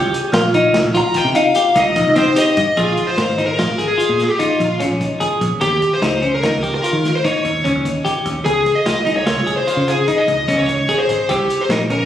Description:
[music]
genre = progressive instrumental, band music in an uneven meter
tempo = 148 BPM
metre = 7/4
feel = straight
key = Bb dorian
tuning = A4 = 441 Hz
[part]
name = vibraphone with medium hard mallets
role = second line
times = 0.0-2.5 s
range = Eb4 to G4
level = -20 LUFS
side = left 1 dB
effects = none
[part]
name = clean electric guitar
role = arpeggios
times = 0.0-12.0 s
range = C4 to Ab4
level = -19 LUFS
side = left 1 dB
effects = phaser, ping-pong delay
[part]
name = picked electric bass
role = bass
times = 0.0-12.0 s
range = Ab1 to Eb3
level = -22 LUFS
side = equal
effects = none
[part]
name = crunchy breakbeat drum kit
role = drums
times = 0.1-12.0 s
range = hi-hat, kick drum, snare drum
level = -24 LUFS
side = equal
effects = none
[part]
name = smooth overdriven lead guitar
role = melody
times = 1.0-12.1 s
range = F4 to Bb5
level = -18 LUFS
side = left 1 dB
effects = ping-pong delay
[sound]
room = wet studio reverb, RT60 0.6 s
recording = recorded on a phone in the room, studio reverb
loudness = -14 LUFS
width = side -10 dB against mid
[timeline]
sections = 0.0-2.8 A section; 2.8-12.1 B section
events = lead electric guitar solo 0.0-2.8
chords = 0.0 Cm7; 2.8 Bb7(no3); 5.6 Eb7; 8.5 Dbmaj9; 11.3 Cm7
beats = 0.34 0.74 1.15 1.55 1.96 2.37 | 2.77 3.18 3.58 3.99 4.40 4.80 5.21 | 5.62 6.02 6.43 6.83 7.24 7.65 8.05 | 8.46 8.86 9.27 9.68 10.08 10.49 10.89 | 11.30 11.71

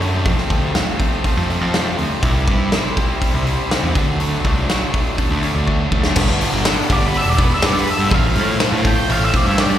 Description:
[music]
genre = classic rock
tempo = 122 BPM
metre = 4/4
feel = straight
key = G major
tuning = A4 = 440 Hz
[part]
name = distorted electric guitar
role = riff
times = 0.0-9.8 s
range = F2 to F4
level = -21 LUFS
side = equal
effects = overdrive, slapback echo
[part]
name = fuzz picked electric bass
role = bass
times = 0.0-9.8 s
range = E1 to A2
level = -19 LUFS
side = equal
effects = overdrive
[part]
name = big rock drum kit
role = drums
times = 0.0-9.7 s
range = crash cymbal, hi-hat, kick drum, snare drum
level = -19 LUFS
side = equal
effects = none
[part]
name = octave-fuzz lead guitar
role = melody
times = 6.9-9.8 s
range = B4 to G5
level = -20 LUFS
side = equal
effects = distortion, slapback echo
[sound]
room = little or no reverb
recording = live gig heard through the venue's PA, recital hall reverb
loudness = -15 LUFS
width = side -11 dB against mid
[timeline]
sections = 0.0-6.2 A section; 6.2-9.8 B section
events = drum fill 5.7-6.2; lead electric guitar solo 6.2-9.8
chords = 0.3 F; 2.2 C; 4.0 D; 6.2 G; 8.1 F/A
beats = | 0.26 0.75 1.25 1.74 | 2.23 2.73 3.22 3.71 | 4.20 4.70 5.19 5.68 | 6.17 6.66 7.15 7.64 | 8.12 8.61 9.10 9.59

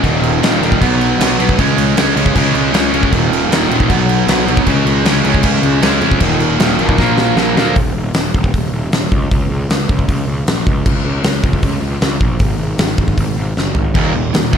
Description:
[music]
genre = punk rock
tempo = 155 BPM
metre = 4/4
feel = straight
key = Eb minor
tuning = A4 = 440 Hz
[part]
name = distorted electric guitar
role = riff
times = 0.0-7.8, 13.9-14.6 s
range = Eb2 to Db4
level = -16 LUFS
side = right 13 dB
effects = distortion
[part]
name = sludgy distorted guitar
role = riff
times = 0.0-7.7, 13.9-14.6 s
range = Eb2 to Db4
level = -16 LUFS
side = left 12 dB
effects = overdrive
[part]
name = fuzz picked electric bass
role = bass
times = 0.0-14.6 s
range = Eb1 to F2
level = -18 LUFS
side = equal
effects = overdrive
[part]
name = big rock drum kit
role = drums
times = 0.0-14.6 s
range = crash cymbal, hi-hat, kick drum, snare drum, toms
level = -15 LUFS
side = equal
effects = none
[sound]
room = little or no reverb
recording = none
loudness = -12 LUFS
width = side -7 dB against mid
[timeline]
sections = 0.0-7.8 A section; 7.8-14.6 B section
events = drum fill 7.0-7.8, 13.6-13.9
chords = 0.0 Eb5; 0.8 B5; 1.6 Db5; 3.1 Eb5; 3.9 B5; 4.7 Db5; 6.2 Eb5; 7.0 Bb; 7.8 N.C.; 13.9 Eb5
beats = | 0.03 0.41 0.80 1.19 | 1.57 1.96 2.35 2.73 | 3.12 3.51 3.89 4.28 | 4.67 5.05 5.44 5.83 | 6.21 6.60 6.99 7.37 | 7.76 8.15 8.53 8.92 | 9.31 9.70 10.08 10.47 | 10.86 11.24 11.63 12.02 | 12.40 12.79 13.18 13.56 | 13.95 14.34

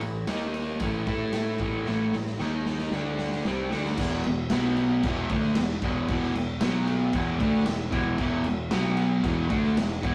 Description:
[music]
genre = garage rock duo or trio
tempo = 114 BPM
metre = 4/4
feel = straight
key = unclear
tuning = A4 = 440 Hz
[part]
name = raw garage guitar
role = riff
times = 0.0-10.1 s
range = E2 to A4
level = -28 LUFS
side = equal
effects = overdrive
[part]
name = growling picked electric bass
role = bass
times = 0.0-10.1 s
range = E1 to A2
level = -36 LUFS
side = equal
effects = overdrive, tube saturation
[part]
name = raw garage drum kit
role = drums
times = 0.0-10.1 s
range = crash cymbal, kick drum, ride cymbal, snare drum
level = -34 LUFS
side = equal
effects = none
[sound]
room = moderate stone room reverb, RT60 1.0 s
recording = rough rehearsal-room recording, tube saturation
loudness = -27 LUFS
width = mono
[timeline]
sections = 0.0-4.0 A section; 4.0-10.1 B section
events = drum fill 1.9-4.0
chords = 0.3 D#5; 0.8 A5; 2.4 D#5; 2.9 D5; 3.5 Csus2; 4.0 E5; 4.5 B5; 5.0 E5; 6.6 B5; 7.1 E5; 8.7 B5; 9.2 E5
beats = 0.28 0.81 1.34 | 1.87 2.40 2.92 3.45 | 3.98 4.51 5.03 5.56 | 6.08 6.61 7.13 7.66 | 8.19 8.71 9.24 9.76

